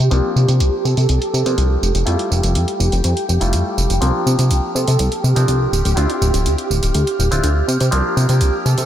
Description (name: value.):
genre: filtered disco house.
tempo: 123 BPM.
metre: 4/4.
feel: straight.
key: C mixolydian.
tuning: A4 = 440 Hz.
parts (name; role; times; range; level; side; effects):
phased string machine; sustained chords; 0.0-8.9 s; G4 to F6; -22 LUFS; right 1 dB; ensemble chorus, phaser, low-pass filter.
plucky analog bass; bass; 0.0-8.9 s; D1 to C3; -16 LUFS; equal; low-pass filter.
electronic hi-hat and tambourine; drums; 0.0-8.9 s; none; -25 LUFS; right 3 dB; low-pass filter on hats, low-pass filter on snare, low-pass filter on cymbals, low-pass filter on perc, low-pass filter on room.
clav; accompaniment; 0.1-8.9 s; F3 to Bb4; -24 LUFS; left 1 dB; phaser, low-pass filter.
analog synth brass; melody; 0.8-1.8, 4.7-8.9 s; G4 to A4; -30 LUFS; right 3 dB; none.
room: moderate cathedral reverb, RT60 5.1 s.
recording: dreamy mix soaked in reverb.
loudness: -14 LUFS.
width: side -11 dB against mid.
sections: 0.0-8.9 A section.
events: filter sweep 0.0-8.9.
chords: 0.0 C9sus4; 1.8 Fmaj9; 4.0 C9sus4; 5.7 Dm9; 7.7 C9sus4.